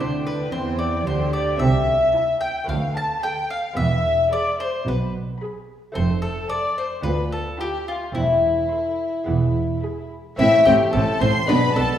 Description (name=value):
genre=classical, baroque-style concerto movement with solo episodes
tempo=110 BPM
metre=4/4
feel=straight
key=A minor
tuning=A4 = 440 Hz
part: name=mandolin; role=melody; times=0.0-12.0 s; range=E4 to A5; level=-22 LUFS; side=left 3 dB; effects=none
part: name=rich studio violin section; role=melody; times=0.0-12.0 s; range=E5 to C6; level=-27 LUFS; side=left 2 dB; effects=none
part: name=dark chamber violin section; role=second line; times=0.0-12.0 s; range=E4 to A5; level=-27 LUFS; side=left 1 dB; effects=none
part: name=lute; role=accompaniment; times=0.0-12.0 s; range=D2 to B4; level=-31 LUFS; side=equal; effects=none
part: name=rich studio viola section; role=accompaniment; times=0.0-11.8 s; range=C4 to A4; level=-29 LUFS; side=right 1 dB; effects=none
part: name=rich chamber double bass section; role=bass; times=0.0-11.8 s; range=E1 to E2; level=-26 LUFS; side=right 2 dB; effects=none
part: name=warm chamber cello section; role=bass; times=0.0-11.8 s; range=D2 to E3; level=-25 LUFS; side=right 2 dB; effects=none
room=wet recital hall reverb, RT60 1.5 s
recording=heard from further back in the room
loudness=-19 LUFS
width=side -10 dB against mid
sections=0.0-10.4 A section; 10.4-12.0 B section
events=none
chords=0.0 C; 1.6 Am/C; 2.7 Dm6; 3.8 E; 6.0 F; 7.0 Bdim/D; 8.2 Am/E; 9.3 E; 10.4 Am